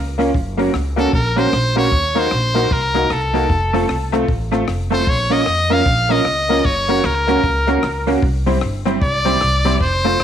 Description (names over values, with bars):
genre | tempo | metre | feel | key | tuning
ska | 152 BPM | 4/4 | swing 62% on 8ths | unclear | A4 = 442 Hz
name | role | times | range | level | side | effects
upright bass | bass | 0.0-10.2 s | F1 to F2 | -21 LUFS | equal | none
vintage hollow-body jazz guitar | accompaniment | 0.2-10.2 s | G3 to Gb4 | -21 LUFS | right 8 dB | slapback echo
honky-tonk upright piano | stabs | 0.2-10.2 s | A3 to C5 | -22 LUFS | left 9 dB | none
compact cocktail drum kit | drums | 0.2-10.2 s | hi-hat, kick drum, rim click | -24 LUFS | left 1 dB | none
brilliant trumpet | melody | 1.0-10.2 s | A4 to F5 | -18 LUFS | equal | slapback echo
room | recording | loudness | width
moderate echo chamber reverb, RT60 1.3 s, small room ambience | 1960s-style stereo with parts hard left and right, vinyl crackle | -14 LUFS | side -9 dB against mid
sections
0.0-10.2 A section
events
trumpet solo 0.0-10.2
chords
0.3 Gb; 1.9 Ebm; 3.5 F; 5.1 Bbm; 6.6 Gb; 8.2 C